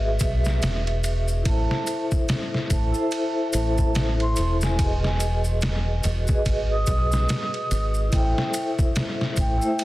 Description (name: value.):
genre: trip hop.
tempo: 72 BPM.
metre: 4/4.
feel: swing 59% on 16ths.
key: unclear.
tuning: A4 = 441 Hz.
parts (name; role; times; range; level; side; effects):
vibraphone with medium mallets; accompaniment; 0.0-9.8 s; A3 to E5; -28 LUFS; left 1 dB; tremolo.
deep dub fingered electric bass; bass; 0.0-9.6 s; E1 to B1; -24 LUFS; equal; none.
mellow hollow baroque flute; melody; 0.1-9.8 s; E5 to D#6; -31 LUFS; right 3 dB; tape echo.
trip hop sampler-style drum kit; drums; 0.2-9.8 s; kick drum, ride cymbal, snare drum; -26 LUFS; equal; none.
maracas; percussion; 0.2-9.8 s; none; -37 LUFS; left 1 dB; none.
room: small room ambience.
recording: dense, heavily limited modern master, vinyl crackle.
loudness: -21 LUFS.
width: side -17 dB against mid.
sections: 0.0-9.8 A section.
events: none.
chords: 0.0 Emaj7; 1.5 Am; 4.8 Emaj7; 8.1 Am.